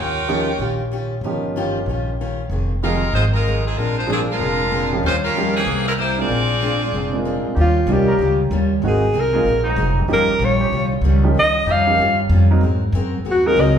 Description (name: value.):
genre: jazz.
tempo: 190 BPM.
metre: 4/4.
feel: swing 63% on 8ths.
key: Eb mixolydian.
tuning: A4 = 440 Hz.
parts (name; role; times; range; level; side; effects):
edgy saxophone section; melody; 0.0-0.8, 2.8-7.3 s; Fb3 to G5; -21 LUFS; equal; none.
picked steel-string acoustic guitar; accompaniment; 0.0-13.8 s; F2 to Bb4; -24 LUFS; left 1 dB; none.
upright bass; bass; 0.0-13.8 s; F1 to Ab2; -20 LUFS; equal; none.
warm baby grand piano; accompaniment; 0.3-13.8 s; F3 to Bb4; -25 LUFS; right 3 dB; none.
bright trombone section; sustained chords; 7.5-13.8 s; F3 to Bb4; -28 LUFS; right 2 dB; none.
warm alto saxophone; melody; 7.6-13.8 s; F4 to F5; -17 LUFS; left 1 dB; none.
room: wet large studio reverb, RT60 1.3 s.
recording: band playing live in one room.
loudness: -16 LUFS.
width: side -8 dB against mid.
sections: 0.0-7.6 A section; 7.6-13.8 B section.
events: alto saxophone solo 7.6-13.8.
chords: 0.0 Eb9; 2.5 Fm7; 3.8 Bb9; 5.0 Eb9; 5.7 C7; 6.3 Bb9; 7.6 Eb9; 8.8 Ab9; 10.1 Eb9; 12.6 Ab9.